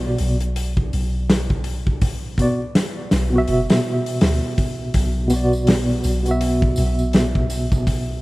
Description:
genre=trip hop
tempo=82 BPM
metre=4/4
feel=swing 59% on 16ths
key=B minor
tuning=A4 = 440 Hz
part: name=tine electric piano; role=accompaniment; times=0.0-8.2 s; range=B2 to E5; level=-21 LUFS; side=equal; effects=medium tremolo, tape echo
part: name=soft 808-style bass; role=bass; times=0.0-8.2 s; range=F#1 to D2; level=-22 LUFS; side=equal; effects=none
part: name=big rock drum kit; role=drums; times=0.2-8.1 s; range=hi-hat, kick drum, snare drum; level=-21 LUFS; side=equal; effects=none
part: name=tambourine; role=percussion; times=4.9-8.0 s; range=none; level=-39 LUFS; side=right 3 dB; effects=none
room=light reverb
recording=rough home demo mix, vinyl crackle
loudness=-17 LUFS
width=side -20 dB against mid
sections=0.0-8.2 A section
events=none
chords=0.0 Bm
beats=0.56 1.29 | 2.02 2.75 3.48 4.22 | 4.95 5.68 6.41 7.14 | 7.88

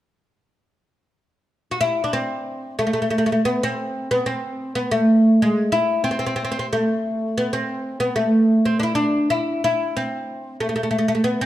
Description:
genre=persian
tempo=92 BPM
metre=3/4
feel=straight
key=A avaz esfahan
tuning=A4 = 444 Hz
part: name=oud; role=melody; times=1.7-11.5 s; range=G#3 to F#4-50c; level=-18 LUFS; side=equal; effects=none
room=wet recital hall reverb, RT60 1.4 s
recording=dark, warm production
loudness=-18 LUFS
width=side -13 dB against mid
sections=0.2-2.1 A section; 2.1-11.5 B section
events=none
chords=none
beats=| 0.18 0.83 1.48 | 2.12 2.77 3.42 | 4.07 4.72 5.37 | 6.02 6.67 7.32 | 7.97 8.62 9.27 | 9.92 10.57 11.23

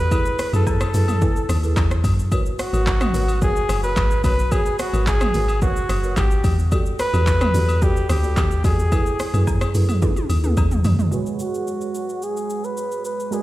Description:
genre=amapiano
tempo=109 BPM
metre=4/4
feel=straight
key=G# phrygian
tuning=A4 = 439 Hz
part: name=clear flugelhorn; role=melody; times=0.0-13.4 s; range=F#4 to B4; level=-24 LUFS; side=equal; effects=low-pass filter, digital delay
part: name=deep log drum bass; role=bass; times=0.0-11.1 s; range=F#1 to F#2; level=-20 LUFS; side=equal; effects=none
part: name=folk marimba with medium mallets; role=stabs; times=0.1-10.5 s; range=E4 to G#5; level=-29 LUFS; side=right 2 dB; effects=digital delay
part: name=deep house drum kit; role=drums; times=0.1-13.4 s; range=handclaps, hi-hat, kick drum, rim click, shaker, toms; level=-22 LUFS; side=equal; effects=overdrive
part: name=agogo bells and woodblock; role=percussion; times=0.1-11.0 s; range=none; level=-34 LUFS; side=left 6 dB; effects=none
part: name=warm analog keys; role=accompaniment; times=11.1-13.4 s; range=G#3 to D5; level=-27 LUFS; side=right 5 dB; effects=chorus, low-pass filter
room=digital ambience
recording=played on a big sound system in a bare room, stone room reverb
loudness=-17 LUFS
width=side -16 dB against mid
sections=0.0-11.1 A section; 11.1-13.4 B section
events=drop 0.0-11.1; drum fill 10.0-11.1; filter sweep 11.1-13.4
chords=0.1 F#m11; 2.3 G#m11; 6.4 Em11; 8.9 F#m11; 11.1 G#m11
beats=| 0.11 0.66 1.22 1.76 | 2.32 2.87 3.42 3.97 | 4.52 5.07 5.62 6.17 | 6.72 7.27 7.82 8.37 | 8.92 9.47 10.02 10.57 | 11.12 11.67 12.22 12.77 | 13.32

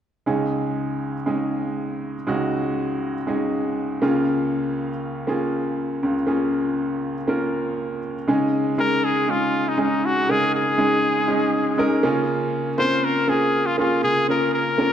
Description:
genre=pop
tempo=120 BPM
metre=4/4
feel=straight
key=Db major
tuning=A4 = 440 Hz
part: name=bright upright piano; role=accompaniment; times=0.3-14.9 s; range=Db2 to Bb4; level=-21 LUFS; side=equal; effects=none
part: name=bright trumpet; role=melody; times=8.8-14.9 s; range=Eb4 to C5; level=-21 LUFS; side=left 2 dB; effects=none
room=moderate concert hall reverb, RT60 2.3 s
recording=none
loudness=-20 LUFS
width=side -9 dB against mid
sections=0.3-8.3 A section; 8.3-14.9 B section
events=none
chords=0.3 Dbsus2; 4.0 Bbm7/Db; 8.3 Dbsus2; 12.0 Bbm7/Db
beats=| 0.27 0.77 1.27 1.77 | 2.27 2.77 3.28 3.78 | 4.28 4.78 5.28 5.78 | 6.28 6.78 7.28 7.78 | 8.28 8.78 9.29 9.79 | 10.29 10.79 11.29 11.79 | 12.29 12.79 13.29 13.79 | 14.29 14.79

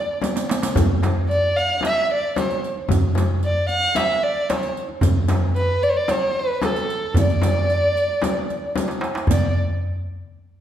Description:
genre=Arabic maqam ensemble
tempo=112 BPM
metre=4/4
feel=straight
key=D maqam rast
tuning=A4 = 441 Hz
part: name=dark violin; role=melody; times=0.0-9.5 s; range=A4 to F5+48c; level=-21 LUFS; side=right 1 dB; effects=none
part: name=darbuka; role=percussion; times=0.2-9.5 s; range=none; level=-22 LUFS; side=right 1 dB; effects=none
part: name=frame drum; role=percussion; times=0.2-9.5 s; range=none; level=-26 LUFS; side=left 3 dB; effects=none
part: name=riq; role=percussion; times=0.2-9.5 s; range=none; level=-30 LUFS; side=right 2 dB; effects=none
room=wet recital hall reverb, RT60 1.4 s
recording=heard from further back in the room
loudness=-18 LUFS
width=side -10 dB against mid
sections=0.0-9.3 A section; 9.3-10.6 B section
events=drum fill 0.2-0.8, 8.8-9.3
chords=none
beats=0.23 | 0.76 1.29 1.83 2.36 | 2.89 3.43 3.96 4.50 | 5.03 5.56 6.09 6.63 | 7.16 7.69 8.22 8.76 | 9.29

